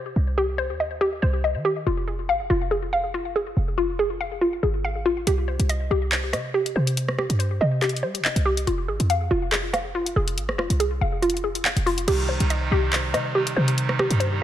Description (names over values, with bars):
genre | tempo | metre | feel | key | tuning
hip hop, drill | 141 BPM | 4/4 | half-time | C minor | A4 = 438 Hz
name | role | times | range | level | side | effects
hollow square pluck | arpeggios | 0.0-14.4 s | F4 to F5 | -24 LUFS | left 1 dB | chorus, low-pass filter, ping-pong delay
short 808-style bass | bass | 0.0-14.4 s | F1 to G3 | -25 LUFS | equal | none
drill drum kit | drums | 5.3-14.3 s | crash cymbal, handclaps, hi-hat, rim click | -26 LUFS | equal | none
pipe organ, clarinet reed | sustained chords | 12.1-14.4 s | C3 to Eb4 | -28 LUFS | right 4 dB | none
room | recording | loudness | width
light reverb | none | -21 LUFS | side -11 dB against mid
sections
0.0-12.1 A section; 12.1-14.4 B section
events
none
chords
0.0 Cm; 1.9 Fm; 5.3 Cm; 8.7 Fm; 12.1 Cm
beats
| 0.16 0.59 1.01 1.44 | 1.86 2.29 2.71 3.14 | 3.57 3.99 4.42 4.84 | 5.27 5.69 6.12 6.54 | 6.97 7.40 7.82 8.25 | 8.67 9.10 9.52 9.95 | 10.38 10.80 11.23 11.65 | 12.08 12.50 12.93 13.35 | 13.78 14.21